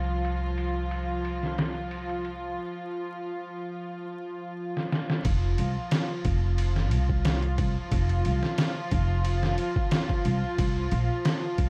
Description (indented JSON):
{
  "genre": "trip hop",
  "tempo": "90 BPM",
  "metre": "4/4",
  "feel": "swing 53% on 16ths",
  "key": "unclear",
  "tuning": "A4 = 440 Hz",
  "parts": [
    { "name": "dark studio string section", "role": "sustained chords", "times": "0.0-11.7 s", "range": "F3 to F4", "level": "-35 LUFS", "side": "equal", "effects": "none" },
    { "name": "upright bass", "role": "bass", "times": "0.0-11.7 s", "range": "F1 to C2", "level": "-30 LUFS", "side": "equal", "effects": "tube saturation" },
    { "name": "trip hop sampler-style drum kit", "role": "drums", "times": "0.2-11.7 s", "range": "kick drum, ride cymbal, snare drum", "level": "-31 LUFS", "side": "equal", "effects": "overdrive, low-pass filter on cymbals, low-pass filter on snare, low-pass filter on kick" }
  ],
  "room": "light reverb, small room ambience",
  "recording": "vinyl crackle",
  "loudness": "-28 LUFS",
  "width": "mono",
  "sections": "0.0-5.3 A section; 5.3-11.7 B section",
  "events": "break 2.6-5.3; drum fill 4.8-5.3",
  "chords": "0.0 Csus4; 2.6 N.C.; 5.3 F5; 10.6 Csus4",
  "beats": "0.59 1.25 1.92 | 2.59 3.25 3.92 4.59 | 5.25 5.92 6.59 7.25 | 7.92 8.59 9.26 9.92 | 10.59 11.26"
}